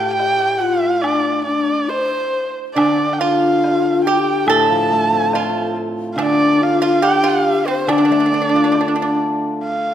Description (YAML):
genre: chinese traditional, Chinese chamber ensemble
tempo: 70 BPM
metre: 2/4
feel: straight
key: D yu mode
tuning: A4 = 440 Hz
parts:
  - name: dark erhu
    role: melody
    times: 0.0-9.9 s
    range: C5 to A5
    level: -19 LUFS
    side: right 2 dB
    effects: none
  - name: breathy mellow low xiao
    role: second line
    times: 0.0-9.2 s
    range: D4 to C5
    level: -19 LUFS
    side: left 5 dB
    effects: none
  - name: hammered dulcimer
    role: accompaniment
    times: 0.0-9.9 s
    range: A2 to A4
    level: -21 LUFS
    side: right 1 dB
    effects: none
  - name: woodblock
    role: percussion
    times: 0.2-9.0 s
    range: none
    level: -28 LUFS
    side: left 1 dB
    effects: none
  - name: pipa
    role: second line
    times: 2.8-9.1 s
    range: C4 to A4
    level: -21 LUFS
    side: right 4 dB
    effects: none
room: moderate concert hall reverb, RT60 1.8 s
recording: none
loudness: -14 LUFS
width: side -10 dB against mid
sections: 0.0-9.6 A section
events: none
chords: none